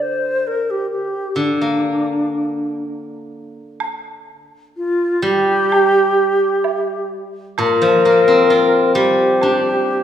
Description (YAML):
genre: chinese traditional, Chinese chamber ensemble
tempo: 64 BPM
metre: 4/4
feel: rubato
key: D jue mode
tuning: A4 = 439 Hz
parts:
  - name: bright reedy low xiao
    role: melody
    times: 0.0-10.0 s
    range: D4 to C5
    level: -16 LUFS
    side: left 1 dB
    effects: none
  - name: steel-string zither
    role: accompaniment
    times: 0.0-10.0 s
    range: Bb2 to F4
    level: -19 LUFS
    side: equal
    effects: none
  - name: woodblock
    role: percussion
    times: 3.8-9.6 s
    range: none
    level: -28 LUFS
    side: right 4 dB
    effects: none
room: wet recital hall reverb, RT60 1.8 s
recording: heard from further back in the room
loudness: -14 LUFS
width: side -10 dB against mid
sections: 0.0-3.8 A section; 3.8-10.0 B section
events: none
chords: none